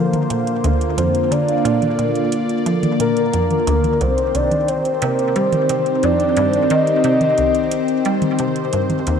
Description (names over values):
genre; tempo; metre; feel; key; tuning
ambient, sequencer-driven space music; 89 BPM; 4/4; straight; C minor; A4 = 440 Hz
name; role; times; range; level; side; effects
soft octave-layered synth lead; melody; 0.0-8.1 s; Bb4 to Eb5; -20 LUFS; left 1 dB; chorus, tremolo, tape echo
phased analog pad; sustained chords; 0.0-9.2 s; D3 to D5; -20 LUFS; equal; phaser, chorus
resonant blip pluck; riff; 0.0-9.2 s; C2 to G3; -22 LUFS; right 1 dB; chorus, tape echo
soft vintage rhythm box; percussion; 0.1-9.2 s; hi-hat, toms; -26 LUFS; right 1 dB; tape echo
room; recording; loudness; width
wet plate reverb, RT60 3.5 s; dreamy mix soaked in reverb; -15 LUFS; side -7 dB against mid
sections
0.0-9.2 A section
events
none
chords
0.0 Bbadd9; 4.0 Cm